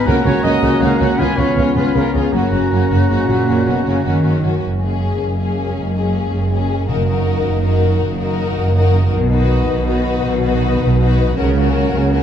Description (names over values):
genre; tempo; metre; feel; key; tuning
cinematic; 106 BPM (dotted quarters); 12/8; straight; F# major; A4 = 441 Hz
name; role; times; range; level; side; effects
warm symphonic violin section; melody; 0.0-12.2 s; E#4 to B4; -23 LUFS; left 6 dB; none
clear clarinet; second line; 0.0-4.4 s; C#4; -27 LUFS; left 5 dB; none
clear oboe; second line; 0.0-4.4 s; A#5 to B5; -27 LUFS; right 1 dB; none
silver concert flute; second line; 0.0-4.4 s; E#6 to F#6; -30 LUFS; left 3 dB; none
warm symphonic violin section; second line; 0.0-12.2 s; C#4 to F#4; -26 LUFS; left 2 dB; none
warm symphonic viola section; accompaniment; 0.0-12.2 s; A#3 to D#4; -25 LUFS; right 1 dB; none
mellow French horn section; sustained chords; 0.0-12.2 s; D#3 to F#4; -24 LUFS; left 6 dB; none
bright trombone section; sustained chords; 0.1-4.4 s; C#3 to B3; -24 LUFS; right 4 dB; none
clear trumpet section; stabs; 0.1-4.4 s; F#4 to G#5; -23 LUFS; right 2 dB; none
warm symphonic cello section; bass; 0.1-12.2 s; F#2 to D#3; -19 LUFS; right 1 dB; none
warm symphonic double bass section; bass; 0.1-12.2 s; F#1 to C#2; -19 LUFS; right 2 dB; none
timpani; percussion; 6.9-7.4 s; F#2; -24 LUFS; left 1 dB; none
room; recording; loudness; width
moderate scoring stage reverb, RT60 1.9 s; dark, warm production; -14 LUFS; side -9 dB against mid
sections
0.0-4.6 A section; 4.6-12.2 B section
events
none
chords
0.1 F#/C#; 1.2 C#7; 2.3 F#; 4.6 F#add9; 6.9 D#m/F#; 9.1 B; 11.4 F#/C#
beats
| 0.07 0.63 1.19 1.76 | 2.33 2.91 3.48 4.06 | 4.63 5.20 5.76 6.32 | 6.89 7.45 8.01 8.57 | 9.13 9.69 10.25 10.81 | 11.38 11.95